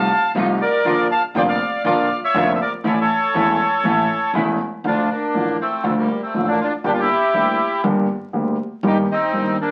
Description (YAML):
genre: tango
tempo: 120 BPM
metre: 4/4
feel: rubato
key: D minor from 4.8 s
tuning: A4 = 443 Hz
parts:
  - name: bandoneon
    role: melody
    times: 0.0-9.7 s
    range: G3 to A5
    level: -21 LUFS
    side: equal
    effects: none
  - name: warm grand piano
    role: accompaniment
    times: 0.0-9.5 s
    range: E1 to G4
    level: -23 LUFS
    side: equal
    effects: none
  - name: muted studio string section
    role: stabs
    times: 0.0-4.6 s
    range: A3 to F4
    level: -28 LUFS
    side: equal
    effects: none
  - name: upright bass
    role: bass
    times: 0.0-9.5 s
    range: E1 to D2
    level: -39 LUFS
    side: equal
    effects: none
room: wet studio reverb, RT60 0.6 s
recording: very old 78 rpm record, vinyl crackle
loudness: -19 LUFS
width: mono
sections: 0.0-4.8 A section; 4.8-9.7 B section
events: none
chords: 0.0 F7; 0.8 Bb; 2.8 A; 4.8 Dm; 6.8 Gm; 8.8 Eb/G